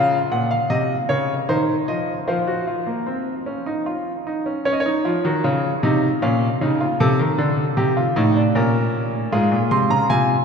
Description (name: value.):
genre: classical, baroque-style 3-part fugue for grand piano.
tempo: 77 BPM.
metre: 3/4.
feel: straight.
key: Bb minor.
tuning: A4 = 440 Hz.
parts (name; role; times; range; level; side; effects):
clear grand piano; solo; 0.0-10.3 s; Ab2 to C6; -18 LUFS; equal; none.
room: wet cathedral reverb, RT60 5.1 s.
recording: recorded in a church or concert hall.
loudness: -18 LUFS.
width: side -6 dB against mid.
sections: 0.0-4.7 A section; 4.7-10.4 B section.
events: none.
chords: 0.0 Bbm; 1.5 Cmadd11/Eb; 2.3 F5; 4.7 Eb7sus2; 6.2 Bbm; 7.0 Adim/C; 8.5 Bbm; 9.3 Fm/Ab.